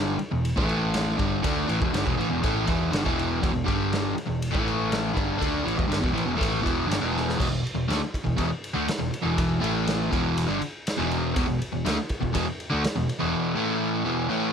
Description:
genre	garage rock duo or trio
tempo	121 BPM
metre	4/4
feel	straight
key	unclear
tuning	A4 = 443 Hz
part	overdriven semi-hollow guitar	riff	0.0-14.5 s	E2 to D4	-24 LUFS	equal	none
part	hollow-body short-scale picked electric bass	bass	0.0-13.3 s	E1 to D2	-32 LUFS	equal	none
part	raw garage drum kit	drums	0.2-13.2 s	crash cymbal, kick drum, ride cymbal, snare drum	-30 LUFS	equal	none
room	light reverb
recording	none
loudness	-23 LUFS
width	side -7 dB against mid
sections	0.0-7.4 A section; 7.4-14.5 B section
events	drum fill 7.1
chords	0.2 E5; 0.6 A5; 1.2 E5; 3.7 G5; 4.2 E5; 4.5 A5; 5.2 E5; 9.6 A5; 10.1 E5; 13.6 A5

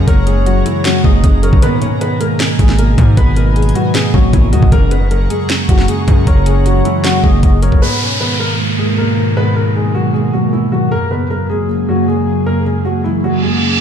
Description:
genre	hip hop, trap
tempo	155 BPM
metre	4/4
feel	half-time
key	G# minor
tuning	A4 = 440 Hz
part	dark concert grand piano	melody	0.0-13.8 s	E3 to C#5	-18 LUFS	left 2 dB	lush chorus, analog delay
part	mellow tine electric piano	accompaniment	0.0-13.8 s	F#2 to A#3	-16 LUFS	right 1 dB	analog chorus
part	airy breathy pad	sustained chords	0.0-13.8 s	F#2 to C#6	-22 LUFS	equal	chorus
part	distorted 808-style bass	bass	0.0-7.8 s	F#1 to G#2	-13 LUFS	equal	distortion
part	soft octave-layered synth lead	second line	0.1-7.8 s	B4 to D#5	-24 LUFS	left 4 dB	chorus, analog delay
part	trap drum kit	drums	0.1-7.8 s	handclaps, hi-hat, kick drum, snare drum	-13 LUFS	equal	none
part	chorused polysynth	stabs	1.6-1.9, 4.7-5.0 s	A#1 to D#3	-22 LUFS	right 1 dB	analog delay
part	downlifter and reverse cymbal	sound effects	7.8-10.9, 13.4-13.8 s	none	-19 LUFS	right 2 dB	none
room	moderate lush hall reverb, RT60 1.7 s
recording	dreamy mix soaked in reverb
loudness	-10 LUFS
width	side -8 dB against mid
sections	0.0-7.8 A section; 7.8-13.8 B section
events	break 1.6-2.4; reverse cymbal 13.4-13.8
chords	0.0 F#add9; 1.6 G#madd9; 4.7 F#add9; 7.8 G#madd9; 10.9 F#add9

